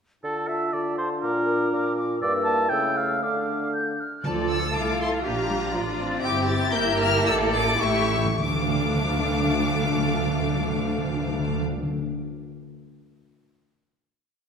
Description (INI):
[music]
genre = quick classical-period movement for symphony orchestra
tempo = 99-123 BPM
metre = 2/4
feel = rubato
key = D minor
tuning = A4 = 440 Hz
[part]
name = dark clarinet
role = second line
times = 0.2-4.0 s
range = F4 to Bb4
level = -34 LUFS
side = equal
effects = none
[part]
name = mellow silver concert flute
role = second line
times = 0.2-4.2 s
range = A5 to G6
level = -32 LUFS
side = left 2 dB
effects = none
[part]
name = warm oboe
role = second line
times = 0.2-3.7 s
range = A4 to A5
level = -26 LUFS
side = right 2 dB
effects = none
[part]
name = mellow bassoon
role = accompaniment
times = 0.2-4.0 s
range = G2 to D3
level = -30 LUFS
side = equal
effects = none
[part]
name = mellow French horn section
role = sustained chords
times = 0.2-3.9 s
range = A3 to F4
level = -29 LUFS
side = left 1 dB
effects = none
[part]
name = rich chamber violin section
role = melody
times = 4.2-11.6 s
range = A5 to A6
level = -28 LUFS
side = left 4 dB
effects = none
[part]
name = rich chamber violin section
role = second line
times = 4.2-11.6 s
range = F4 to G5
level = -30 LUFS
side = left 2 dB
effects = none
[part]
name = warm studio viola section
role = accompaniment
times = 4.2-11.6 s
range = F3 to F4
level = -28 LUFS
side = left 1 dB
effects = none
[part]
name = rich studio double bass section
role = bass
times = 4.2-11.6 s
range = G1 to D2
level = -30 LUFS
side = right 5 dB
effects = none
[part]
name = warm chamber cello section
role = bass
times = 4.2-11.6 s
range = D2 to Bb4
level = -30 LUFS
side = right 2 dB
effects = none
[part]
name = timpani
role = percussion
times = 4.2-5.0, 7.8-12.0 s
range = A2 to D3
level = -29 LUFS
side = left 1 dB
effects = none
[sound]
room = wet scoring stage reverb, RT60 1.9 s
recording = minimal, uncompressed stereo recording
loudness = -22 LUFS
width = side -6 dB against mid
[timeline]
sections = 0.2-4.2 A section; 4.2-8.4 A section; 8.4-10.8 final chord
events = slowing down 5.7-8.4; timpani fill 7.8-8.4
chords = 0.2 Dm; 1.2 Bb; 2.2 Em7b5/G; 2.7 A7/C#; 3.2 Dm; 5.2 Bb; 6.2 G5; 6.7 Edim/G; 7.3 D5/A; 7.8 A7; 8.4 Dm